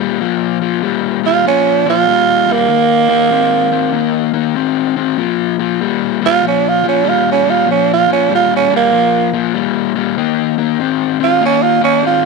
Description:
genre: blues.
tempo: 96 BPM.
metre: 4/4.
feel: swing 66% on 8ths.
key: unclear.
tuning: A4 = 442 Hz.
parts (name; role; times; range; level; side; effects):
raw garage guitar; riff; 0.0-12.3 s; Bb2 to C4; -15 LUFS; left 16 dB; overdrive.
growling tenor saxophone; melody; 1.3-12.3 s; Bb3 to F4; -12 LUFS; right 10 dB; none.
room: light reverb, small room ambience.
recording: 1960s-style stereo with parts hard left and right.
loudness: -11 LUFS.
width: side -3 dB against mid.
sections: 0.2-12.3 A section.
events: tenor saxophone solo 0.2-12.3.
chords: 0.2 Bb5; 2.7 Eb5; 5.2 Bb5; 10.2 Eb5.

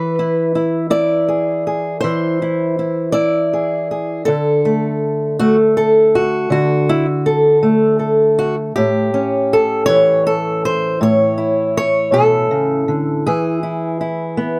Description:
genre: acoustic country blues, solo or duo.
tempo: 53 BPM (dotted quarters).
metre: 12/8.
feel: straight.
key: A major.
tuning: A4 = 439 Hz.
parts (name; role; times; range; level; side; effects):
fingerpicked old ladder-braced acoustic guitar; solo; 0.0-14.6 s; A2 to D5; -16 LUFS; equal; none.
room: little or no reverb.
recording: close, detailed microphones.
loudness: -16 LUFS.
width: mono.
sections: 0.0-14.6 A section.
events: none.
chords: 0.0 E; 4.3 D; 8.8 A; 13.3 E.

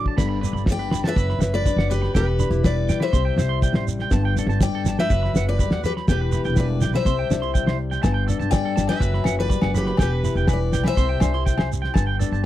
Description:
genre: highlife guitar band.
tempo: 122 BPM.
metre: 4/4.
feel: straight.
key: G major.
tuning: A4 = 440 Hz.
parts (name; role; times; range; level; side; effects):
flamenco guitar; accompaniment; 0.0-12.5 s; G2 to B4; -28 LUFS; left 6 dB; none.
electric guitar at the edge of break-up; arpeggios; 0.0-12.4 s; A4 to C6; -31 LUFS; right 8 dB; tape echo.
upright bass; bass; 0.0-12.5 s; E1 to G2; -23 LUFS; equal; none.
cloth-damped thuddy drum kit; drums; 0.1-12.3 s; crash cymbal, kick drum, snare drum; -21 LUFS; equal; none.
shekere; percussion; 0.2-12.4 s; none; -28 LUFS; right 4 dB; none.
picked steel-string acoustic guitar; melody; 0.7-11.7 s; G4 to G5; -26 LUFS; left 3 dB; none.
agogo bells; percussion; 8.0-12.1 s; none; -32 LUFS; left 19 dB; none.
room: little or no reverb.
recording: dry, close 1970s-style studio recording.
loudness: -19 LUFS.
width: side -13 dB against mid.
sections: 0.2-12.5 A section.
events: none.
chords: 0.2 Gadd9; 1.2 D6/F#; 2.1 Em; 3.1 C; 4.1 Gadd9; 5.1 Em9/F#; 6.1 Em; 7.1 C; 8.0 Gadd9; 9.0 Em9/F#; 10.0 Em; 11.0 C; 12.0 Gadd9.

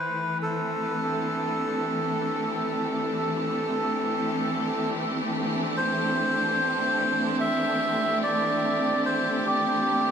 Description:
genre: ambient.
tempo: 73 BPM.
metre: 4/4.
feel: swing 54% on 16ths.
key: A minor.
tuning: A4 = 440 Hz.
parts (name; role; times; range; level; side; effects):
melodica; melody; 0.0-10.1 s; G4 to E5; -26 LUFS; equal; dub echo.
clear studio string section; sustained chords; 0.0-10.1 s; E3 to G4; -27 LUFS; equal; none.
room: wet echo chamber reverb, RT60 1.7 s.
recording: none.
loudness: -24 LUFS.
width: side -7 dB against mid.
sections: 0.0-5.8 A section; 5.8-10.1 B section.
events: none.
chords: 0.0 Am7.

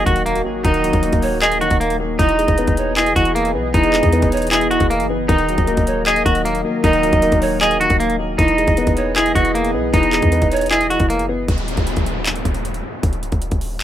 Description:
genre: hip hop, trap.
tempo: 155 BPM.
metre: 4/4.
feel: half-time.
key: unclear.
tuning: A4 = 438 Hz.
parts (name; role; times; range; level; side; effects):
clean electric guitar; melody; 0.0-11.3 s; Bb3 to Ab4; -19 LUFS; equal; tape echo.
breathy bright large pan pipes; second line; 0.0-11.1 s; Db5 to D#5; -23 LUFS; right 6 dB; tape echo.
dark grand piano; accompaniment; 0.0-11.5 s; Eb3 to Eb5; -21 LUFS; left 3 dB; none.
warbly tape-like pad; sustained chords; 0.0-11.5 s; Eb3 to D#5; -25 LUFS; equal; chorus, built-in reverb.
clean 808-style bass; bass; 0.0-13.8 s; Db1 to E2; -23 LUFS; equal; none.
impact and downlifter; sound effects; 0.0-0.6, 11.5-13.8 s; none; -27 LUFS; left 1 dB; none.
trap drum kit; drums; 0.1-13.8 s; handclaps, hi-hat, kick drum; -20 LUFS; equal; none.
room: light reverb.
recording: rough home demo mix.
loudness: -14 LUFS.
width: side -11 dB against mid.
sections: 0.0-11.5 A section; 11.5-13.8 B section.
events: impact 0.0-0.6; break 11.5-13.8.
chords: 0.0 Ebm; 2.2 Emaj7; 5.3 Ebm; 8.4 Emaj7; 11.5 N.C..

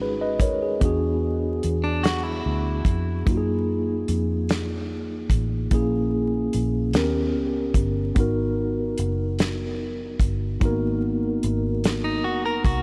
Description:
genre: slow six-eight R&B.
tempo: 49 BPM (dotted quarters).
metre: 6/8.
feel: straight.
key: G# minor.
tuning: A4 = 440 Hz.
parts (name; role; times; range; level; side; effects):
mellow tine electric piano; accompaniment; 0.0-12.8 s; G#3 to D#5; -28 LUFS; equal; none.
vintage muted fingered electric bass; bass; 0.0-12.8 s; F#1 to F#2; -29 LUFS; equal; none.
damped 70s drum kit; drums; 0.4-12.8 s; hi-hat, kick drum, snare drum; -27 LUFS; equal; none.
clean electric guitar; second line; 1.8-3.2, 12.0-12.8 s; D4 to A#4; -30 LUFS; equal; spring reverb.
room: moderate huge ambient reverb, RT60 3.9 s.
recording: dreamy mix soaked in reverb, vinyl crackle.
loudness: -24 LUFS.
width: mono.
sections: 0.0-12.8 A section.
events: none.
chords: 0.0 B69; 0.8 E9; 3.3 F#maj13; 5.7 A#m7b5; 6.9 D#7b13; 8.2 G#m9.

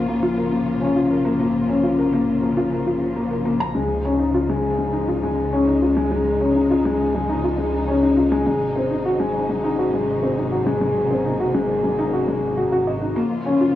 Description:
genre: piano and strings electronica.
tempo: 102 BPM.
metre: 4/4.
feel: straight.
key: unclear.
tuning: A4 = 440 Hz.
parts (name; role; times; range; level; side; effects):
dark studio string section; sustained chords; 0.0-13.8 s; C3 to F4; -27 LUFS; equal; cassette tape, plate reverb.
dark upright piano; riff; 0.0-13.8 s; Ab3 to Bb5; -19 LUFS; left 2 dB; cassette tape, analog delay.
dark detuned saw bass; bass; 0.0-13.8 s; Ab1 to Db2; -30 LUFS; equal; tube saturation, high-pass filter.
room: wet studio reverb, RT60 0.6 s.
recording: home recording on cassette, small room ambience.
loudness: -18 LUFS.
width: side -13 dB against mid.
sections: 0.0-13.2 A section.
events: none.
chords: 0.0 Bbm; 3.8 Dbadd9; 8.5 Ab7; 13.2 Bbm.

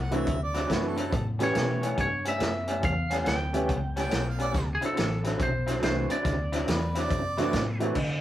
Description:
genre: electric blues shuffle.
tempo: 140 BPM.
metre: 4/4.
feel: swing 64% on 8ths.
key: D mixolydian.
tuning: A4 = 439 Hz.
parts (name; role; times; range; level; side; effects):
warm harmonica; second line; 0.0-1.3, 4.0-7.6 s; A4 to G5; -34 LUFS; right 2 dB; none.
vintage muted fingered electric bass; bass; 0.0-8.2 s; A1 to D3; -31 LUFS; left 1 dB; none.
clear upright piano; accompaniment; 0.1-7.9 s; E3 to G4; -30 LUFS; right 2 dB; none.
electric guitar through a small old amp; riff; 0.1-8.0 s; A2 to E4; -32 LUFS; equal; tremolo.
vintage drum kit; drums; 0.1-8.1 s; crash cymbal, hi-hat, kick drum, snare drum; -31 LUFS; equal; none.
lightly driven lead guitar; melody; 1.4-7.8 s; G#4 to G5; -32 LUFS; equal; none.
room: light reverb.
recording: rough rehearsal-room recording.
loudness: -25 LUFS.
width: side -12 dB against mid.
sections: 0.0-8.0 A section.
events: none.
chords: 0.0 D9; 1.1 A9; 4.5 D9.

